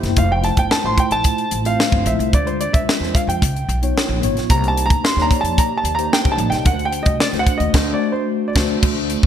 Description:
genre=polished 1980s jazz-funk pop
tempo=111 BPM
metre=4/4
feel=straight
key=unclear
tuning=A4 = 435 Hz
part: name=mellow tine electric piano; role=accompaniment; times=0.0-9.3 s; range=Ab3 to G5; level=-22 LUFS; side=left 2 dB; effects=medium stereo tremolo, wide subtle chorus
part: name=upright bass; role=bass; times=0.0-9.3 s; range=F1 to F#2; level=-22 LUFS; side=equal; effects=none
part: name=crisp fusion drum kit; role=drums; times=0.0-9.3 s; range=crash cymbal, hi-hat, kick drum, snare drum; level=-18 LUFS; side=equal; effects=gated reverb
part: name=dark concert grand piano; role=melody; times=0.2-8.7 s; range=C5 to C6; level=-21 LUFS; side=right 2 dB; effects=none
room=light reverb, studio reverb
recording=bright 1980s-style digital production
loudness=-15 LUFS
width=side -9 dB against mid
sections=0.0-8.8 A section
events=tine electric piano fill 0.0; grand piano solo 0.0-8.8; band accent 7.7-8.8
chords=0.2 Fmaj7; 2.3 Dm7b5; 3.4 C#9; 4.5 Cm7; 6.7 D7

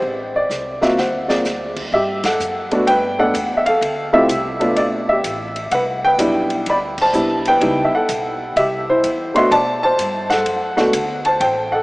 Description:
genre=jazz piano trio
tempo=127 BPM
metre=4/4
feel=swing 66% on 8ths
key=G major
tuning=A4 = 440 Hz
part: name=dark upright piano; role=melody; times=0.0-11.8 s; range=G3 to C6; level=-15 LUFS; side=equal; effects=none
part: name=upright bass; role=bass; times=0.0-11.8 s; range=A1 to B2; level=-33 LUFS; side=equal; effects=none
part: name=swinging big-band drum kit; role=drums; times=0.5-11.6 s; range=crash cymbal, hi-hat, kick drum, ride cymbal, snare drum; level=-29 LUFS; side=equal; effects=none
room=wet cathedral reverb, RT60 5.8 s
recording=in a vast, echoing space, small speaker sound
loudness=-15 LUFS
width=side -23 dB against mid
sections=0.0-1.9 A section; 1.9-11.8 B section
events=drum fill 0.5-1.5; band accent 2.2, 6.9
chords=0.0 Am7; 1.0 D7; 1.9 Gmaj9; 3.8 Dm9; 4.8 Gadd9; 5.7 Cmaj9; 7.6 C#m7b5; 8.6 C; 9.5 Bm7

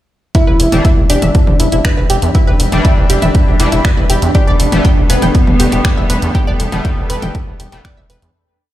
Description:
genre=melodic techno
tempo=120 BPM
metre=4/4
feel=straight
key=E minor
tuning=A4 = 439 Hz
part: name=wide unison lead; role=melody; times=0.3-6.0 s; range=B3 to E4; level=-19 LUFS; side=equal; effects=cassette tape, dub echo
part: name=dark detuned synth bell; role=second line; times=0.3-6.0 s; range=B4 to E5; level=-26 LUFS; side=left 2 dB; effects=chorus, vintage 12-bit sampler grit, sidechain pumping, dub echo
part: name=analog pluck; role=arpeggios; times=0.3-8.2 s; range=E4 to G6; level=-21 LUFS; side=equal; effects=chorus, phaser, sidechain pumping, dub echo
part: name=electronic kick drum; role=drums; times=0.3-7.9 s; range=none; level=-12 LUFS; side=equal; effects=none
part: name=techno drum kit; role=drums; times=0.3-8.3 s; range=finger snaps, hi-hat, toms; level=-19 LUFS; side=left 1 dB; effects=none
part: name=granular cloud pad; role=texture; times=1.7-8.3 s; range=D4 to B5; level=-22 LUFS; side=right 1 dB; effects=built-in reverb, sidechain pumping
part: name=gritty driven synth bass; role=bass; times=0.5-8.3 s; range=E1 to E2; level=-16 LUFS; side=equal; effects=sidechain pumping
part: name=sync-sweep polysynth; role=stabs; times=0.7-7.8 s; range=E3 to D4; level=-22 LUFS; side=left 2 dB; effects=lush chorus, sidechain pumping, dub echo
part: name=clear symphonic string section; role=sustained chords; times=4.3-8.3 s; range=G3 to B3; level=-23 LUFS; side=equal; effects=sidechain pumping
room=little or no reverb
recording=played on a big sound system in a bare room, large studio reverb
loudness=-10 LUFS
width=side -14 dB against mid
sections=0.3-8.3 drop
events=drop 0.3-8.3; fade-out 5.7-8.3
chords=0.3 Em7; 4.3 Gadd9/E

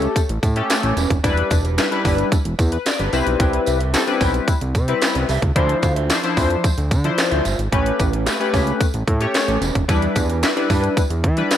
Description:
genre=early-eighties boogie funk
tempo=111 BPM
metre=4/4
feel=straight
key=D dorian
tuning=A4 = 440 Hz
part: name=chorused polysynth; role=accompaniment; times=0.0-11.6 s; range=F3 to D5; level=-21 LUFS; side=left 4 dB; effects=none
part: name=mellow electric guitar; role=riff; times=0.0-11.6 s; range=C#4 to G5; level=-26 LUFS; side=right 5 dB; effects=wide subtle chorus
part: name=fat analog bass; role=bass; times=0.0-11.4 s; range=Eb1 to E3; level=-21 LUFS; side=equal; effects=none
part: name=drum and bass drum kit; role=drums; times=0.0-11.6 s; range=handclaps, hi-hat, kick drum, snare drum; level=-20 LUFS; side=equal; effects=overdrive, gated reverb
part: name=tambourine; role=percussion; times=0.2-11.6 s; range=none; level=-33 LUFS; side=right 6 dB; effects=none
room=little or no reverb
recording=none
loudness=-16 LUFS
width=side -10 dB against mid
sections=0.0-11.6 A section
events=none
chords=0.0 A9; 1.2 Em7; 3.1 Cmaj7; 5.6 Dm9; 7.7 A9; 9.9 Em7

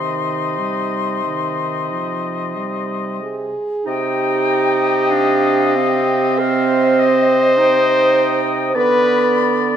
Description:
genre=classical, slow romantic movement for wind quintet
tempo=45-53 BPM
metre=4/4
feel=rubato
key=C minor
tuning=A4 = 440 Hz
part: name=silver concert flute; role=melody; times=0.0-9.8 s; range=Eb5 to C6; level=-24 LUFS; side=left 10 dB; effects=none
part: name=clear oboe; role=second line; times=0.0-9.8 s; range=D5 to F5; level=-23 LUFS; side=left 4 dB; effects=none
part: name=bright clarinet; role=accompaniment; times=0.0-9.8 s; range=B3 to Eb4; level=-22 LUFS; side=right 10 dB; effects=none
part: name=mellow French horn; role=accompaniment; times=0.0-9.6 s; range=Eb3 to C5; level=-18 LUFS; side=equal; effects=none
part: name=mellow bassoon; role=bass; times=0.0-9.8 s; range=C3 to D3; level=-23 LUFS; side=right 3 dB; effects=none
room=moderate recital hall reverb, RT60 1.7 s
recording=none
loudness=-14 LUFS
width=side -9 dB against mid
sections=0.0-3.9 A section; 3.9-9.8 B section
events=none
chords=0.0 Cm; 8.7 Bm/D

